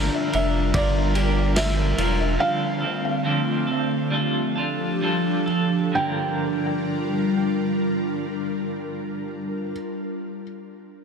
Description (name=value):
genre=dream pop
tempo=64-74 BPM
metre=4/4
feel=straight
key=G dorian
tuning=A4 = 439 Hz
part: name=felt-muted upright piano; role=melody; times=0.0-9.7 s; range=D5 to G5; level=-28 LUFS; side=right 1 dB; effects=ping-pong delay
part: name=clean electric guitar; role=accompaniment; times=0.0-9.8 s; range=G2 to Bb4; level=-28 LUFS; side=right 1 dB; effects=tremolo, wide subtle chorus
part: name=ethereal airy pad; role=sustained chords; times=0.0-9.7 s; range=D3 to Bb4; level=-25 LUFS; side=equal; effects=ensemble chorus, built-in reverb
part: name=mellow electric guitar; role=arpeggios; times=0.0-2.4 s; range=D4 to G4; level=-31 LUFS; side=left 8 dB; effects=wide subtle chorus, ping-pong delay
part: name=saturated sub bass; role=bass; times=0.0-2.4 s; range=E1 to G1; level=-23 LUFS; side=equal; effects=none
part: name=vintage drum kit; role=drums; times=0.3-2.2 s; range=kick drum, ride cymbal, snare drum, tambourine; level=-29 LUFS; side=equal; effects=soft clipping on kick
room=light reverb, studio ambience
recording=dense, heavily limited modern master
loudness=-21 LUFS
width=side -6 dB against mid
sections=0.0-5.9 A section; 5.9-9.7 B section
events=slowing down 0.0-5.9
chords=0.0 Gm7; 2.4 Dm7; 4.1 F69; 5.9 Gm7